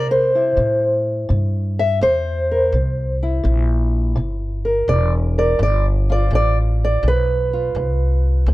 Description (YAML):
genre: acoustic country blues, solo or duo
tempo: 84 BPM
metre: 4/4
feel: swing 67% on 8ths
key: unclear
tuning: A4 = 442 Hz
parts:
  - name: fingerpicked old ladder-braced acoustic guitar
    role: melody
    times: 0.0-8.5 s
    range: G2 to E5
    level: -19 LUFS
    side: equal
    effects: plate reverb
  - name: upright bass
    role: bass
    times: 0.0-8.5 s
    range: E1 to C3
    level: -18 LUFS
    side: equal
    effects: none
room: light reverb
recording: dark, warm production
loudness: -16 LUFS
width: side -18 dB against mid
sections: 0.0-8.5 A section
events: steel-string acoustic guitar solo 0.0-8.5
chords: 0.0 C7; 5.6 G7